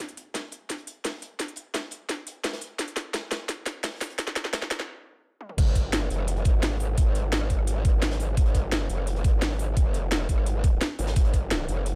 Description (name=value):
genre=dark technical drum and bass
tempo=172 BPM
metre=4/4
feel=straight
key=unclear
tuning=A4 = 440 Hz
part: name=drum and bass drum kit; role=drums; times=0.0-11.9 s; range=crash cymbal, hi-hat, rim click, snare drum, toms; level=-32 LUFS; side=equal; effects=high-pass filter on hats, studio reverb, high-pass filter on snare, high-pass filter on toms, high-pass filter on cymbals
part: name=electronic kick drum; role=drums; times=0.0-11.4 s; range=none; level=-25 LUFS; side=equal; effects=high-pass filter on kick, studio reverb
part: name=crunchy breakbeat drum kit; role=drums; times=0.1-11.9 s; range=hi-hat, snare drum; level=-42 LUFS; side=equal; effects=high-pass filter on hats, studio reverb, high-pass filter on snare, high-pass filter on room
part: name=growl bass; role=bass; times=5.6-12.0 s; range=F#1 to G#1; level=-30 LUFS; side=equal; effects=chorus, tube saturation, sidechain pumping
room=studio reverb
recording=none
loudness=-27 LUFS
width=mono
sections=0.0-5.6 A section; 5.6-12.0 B section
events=build-up 0.0-5.6; drum fill 0.0-4.9, 5.4; stop 4.9-5.6; drop 5.6-12.0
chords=none